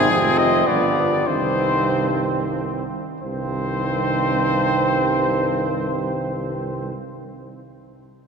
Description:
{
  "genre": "classical, brass quintet",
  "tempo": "87-108 BPM",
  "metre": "3/4",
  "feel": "rubato",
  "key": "C minor",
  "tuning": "A4 = 440 Hz",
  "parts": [
    { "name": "clear trumpet", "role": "melody", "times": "0.0-6.9 s", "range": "Ab4 to Eb5", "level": "-23 LUFS", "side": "left 4 dB", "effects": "none" },
    { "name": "mellow trumpet", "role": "second line", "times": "0.0-6.9 s", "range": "B3 to C4", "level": "-25 LUFS", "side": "right 7 dB", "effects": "none" },
    { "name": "mellow French horn", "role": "accompaniment", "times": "0.0-6.9 s", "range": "Eb3 to F3", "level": "-27 LUFS", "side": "left 2 dB", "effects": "none" },
    { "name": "warm euphonium", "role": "accompaniment", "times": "0.0-6.9 s", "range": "G2 to C3", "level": "-28 LUFS", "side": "right 2 dB", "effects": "none" },
    { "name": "mellow tuba", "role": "bass", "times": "0.0-6.9 s", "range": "F1 to C2", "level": "-26 LUFS", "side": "right 2 dB", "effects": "none" }
  ],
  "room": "wet church reverb, RT60 4.0 s",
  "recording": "minimal, uncompressed stereo recording",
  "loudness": "-18 LUFS",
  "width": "side -6 dB against mid",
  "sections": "0.0-3.2 A section; 3.2-7.2 B section",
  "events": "slowing down 0.0-3.2",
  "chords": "0.1 Fm; 0.7 G7; 1.3 Cm"
}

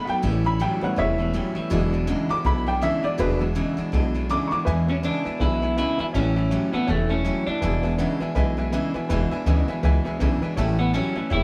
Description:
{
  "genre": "rockabilly",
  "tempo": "162 BPM",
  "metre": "4/4",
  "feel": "swing 59% on 8ths",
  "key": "E mixolydian",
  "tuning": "A4 = 440 Hz",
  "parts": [
    { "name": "picked steel-string acoustic guitar", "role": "accompaniment", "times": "0.0-11.4 s", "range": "E2 to F#4", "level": "-32 LUFS", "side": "equal", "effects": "none" },
    { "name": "warm upright piano", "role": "accompaniment", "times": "0.0-11.4 s", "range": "F#3 to D6", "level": "-30 LUFS", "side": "equal", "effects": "none" },
    { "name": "electric guitar through a small old amp", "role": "riff", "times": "0.0-11.4 s", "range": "E2 to F#3", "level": "-31 LUFS", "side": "equal", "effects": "none" },
    { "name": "upright bass", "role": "bass", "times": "0.1-11.4 s", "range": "E1 to E2", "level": "-26 LUFS", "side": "equal", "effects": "none" },
    { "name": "electric guitar through a small old amp", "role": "melody", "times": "4.9-8.0, 10.8-11.4 s", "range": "A3 to E4", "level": "-28 LUFS", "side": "equal", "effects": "none" }
  ],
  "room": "light reverb",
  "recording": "band playing live in one room",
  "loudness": "-23 LUFS",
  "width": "mono",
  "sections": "0.0-4.7 A section; 4.7-11.4 B section",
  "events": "upright piano solo 0.0-4.7",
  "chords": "0.2 A7; 1.7 E7; 6.1 A7; 7.6 E7; 10.6 A7"
}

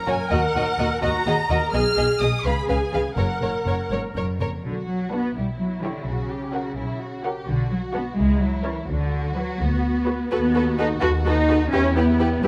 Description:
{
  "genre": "quick classical-period movement for string orchestra",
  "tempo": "85 BPM (dotted quarters)",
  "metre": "6/8",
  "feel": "straight",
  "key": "F# major, B minor from 4.6 s",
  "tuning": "A4 = 437 Hz",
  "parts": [
    { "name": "warm symphonic violin section", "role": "melody", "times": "0.0-12.5 s", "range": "E4 to E#6", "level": "-32 LUFS", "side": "equal", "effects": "none" },
    { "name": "warm symphonic viola section", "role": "accompaniment", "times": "0.0-12.5 s", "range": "C#4 to A#4", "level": "-30 LUFS", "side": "equal", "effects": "none" },
    { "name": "rich symphonic violin section", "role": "second line", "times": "0.1-12.5 s", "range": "F#4 to F#5", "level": "-30 LUFS", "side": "equal", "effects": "none" },
    { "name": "warm symphonic cello section", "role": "bass", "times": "0.1-12.5 s", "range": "D#2 to F#4", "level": "-27 LUFS", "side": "equal", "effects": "none" },
    { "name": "warm symphonic double bass section", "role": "bass", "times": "0.1-12.5 s", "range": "F#1 to E2", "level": "-28 LUFS", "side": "equal", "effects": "none" }
  ],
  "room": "moderate concert hall reverb, RT60 1.8 s",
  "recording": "close, detailed microphones",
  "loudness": "-23 LUFS",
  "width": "mono",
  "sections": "0.0-4.6 A section; 4.6-12.5 B section",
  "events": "none",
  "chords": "0.3 D#m; 1.7 G#m; 2.4 C#7; 3.2 F#; 4.6 Bm; 5.4 C#m7b5/B; 6.1 F#/B; 7.5 Bm; 8.2 A#dim/C#; 8.9 Bm/D; 10.3 B7/D#; 11.7 Em"
}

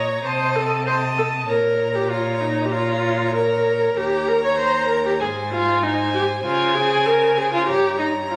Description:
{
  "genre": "quick classical-period movement for string quartet",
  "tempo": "97 BPM",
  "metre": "4/4",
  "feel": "straight",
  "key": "unclear",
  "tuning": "A4 = 439 Hz",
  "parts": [
    { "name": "rich violin", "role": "melody", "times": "0.0-8.4 s", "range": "Ab5 to Bb5", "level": "-28 LUFS", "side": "equal", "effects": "none" },
    { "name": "rich violin", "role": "second line", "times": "0.0-8.4 s", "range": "C5 to Eb5", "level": "-29 LUFS", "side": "equal", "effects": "none" },
    { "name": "dark viola", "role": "accompaniment", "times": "0.0-8.4 s", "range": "Eb4 to Db5", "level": "-22 LUFS", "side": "equal", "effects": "none" },
    { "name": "clear cello", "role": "bass", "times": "0.0-8.4 s", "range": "Eb2 to Db3", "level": "-30 LUFS", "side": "equal", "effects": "none" }
  ],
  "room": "moderate recital hall reverb, RT60 1.4 s",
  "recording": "recorded on a phone in the room, studio ambience, compression",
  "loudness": "-20 LUFS",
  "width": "mono",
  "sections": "0.0-8.4 A section",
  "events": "none",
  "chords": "0.3 Cm6; 1.5 Bbm; 4.0 Eb5; 5.2 Ab; 6.4 Db5; 7.7 Gdim"
}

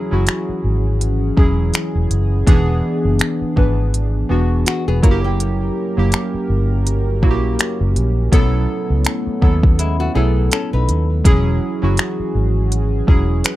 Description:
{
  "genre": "contemporary R&B",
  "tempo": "82 BPM",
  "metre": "4/4",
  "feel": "swing 58% on 16ths",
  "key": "E major",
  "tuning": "A4 = 440 Hz",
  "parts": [
    { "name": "warm analog keys", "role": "accompaniment", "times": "0.0-13.6 s", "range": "E3 to B4", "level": "-22 LUFS", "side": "right 1 dB", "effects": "chorus" },
    { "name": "chorused pulse-width pad", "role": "sustained chords", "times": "0.0-13.6 s", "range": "E3 to A#4", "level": "-25 LUFS", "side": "left 1 dB", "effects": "none" },
    { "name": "vintage muted fingered electric bass", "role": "bass", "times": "0.1-13.4 s", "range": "E1 to D#2", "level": "-17 LUFS", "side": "equal", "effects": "none" },
    { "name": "smooth R&B drum kit", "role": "drums", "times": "0.3-13.6 s", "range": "finger snaps, hi-hat, kick drum", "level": "-14 LUFS", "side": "equal", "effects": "none" },
    { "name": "nylon-string guitar", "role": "arpeggios", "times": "4.7-11.2 s", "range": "G#3 to B4", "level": "-25 LUFS", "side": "left 4 dB", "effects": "tape echo" }
  ],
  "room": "little or no reverb",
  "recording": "dark, warm production",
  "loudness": "-14 LUFS",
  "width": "side -15 dB against mid",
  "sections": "0.0-13.6 A section",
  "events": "none",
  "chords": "0.0 E69; 2.5 E7; 5.0 F#7b9; 8.3 B7sus4; 11.3 E69"
}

